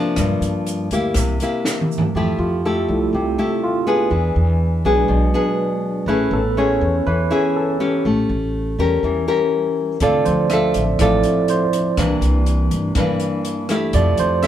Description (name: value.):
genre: bossa nova.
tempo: 122 BPM.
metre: 4/4.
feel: straight.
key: F major.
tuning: A4 = 440 Hz.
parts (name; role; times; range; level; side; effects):
barky tine electric piano; accompaniment; 0.0-14.5 s; E3 to E5; -21 LUFS; right 2 dB; medium stereo tremolo.
nylon-string guitar; accompaniment; 0.0-14.5 s; G2 to Bb4; -20 LUFS; left 2 dB; none.
upright bass; bass; 0.2-14.5 s; A1 to G2; -21 LUFS; equal; none.
compact cocktail drum kit; drums; 0.2-2.1, 10.0-14.5 s; hi-hat, kick drum, rim click, snare drum, toms; -23 LUFS; right 1 dB; none.
tube shaker; percussion; 0.2-2.2 s; none; -33 LUFS; right 6 dB; none.
room: wet studio reverb, RT60 0.6 s.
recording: band playing live in one room.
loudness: -16 LUFS.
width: side -11 dB against mid.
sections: 0.0-2.1 A section; 2.1-14.5 B section.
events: drum fill 1.7-2.1; tine electric piano solo 2.1-14.5.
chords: 0.2 Gm7; 1.2 C7; 2.1 Fmaj9; 4.1 E7; 6.1 Amaj7; 8.0 A7b9; 10.0 Dm7; 12.0 C9; 13.9 Fmaj9.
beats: | 0.18 0.67 1.16 1.65 | 2.15 2.64 3.13 3.62 | 4.11 4.60 5.09 5.59 | 6.08 6.57 7.06 7.55 | 8.04 8.54 9.03 9.52 | 10.01 10.50 10.99 11.48 | 11.97 12.46 12.96 13.45 | 13.94 14.43.